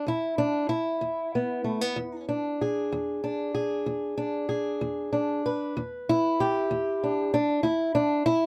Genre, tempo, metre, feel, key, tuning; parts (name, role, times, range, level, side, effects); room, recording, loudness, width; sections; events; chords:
acoustic country blues, solo or duo; 64 BPM (dotted quarters); 12/8; straight; E mixolydian; A4 = 438 Hz
fingerpicked old ladder-braced acoustic guitar; solo; 0.0-8.5 s; E2 to B4; -28 LUFS; equal
light reverb; close, detailed microphones; -28 LUFS; mono
0.0-8.5 A section
0.0 E7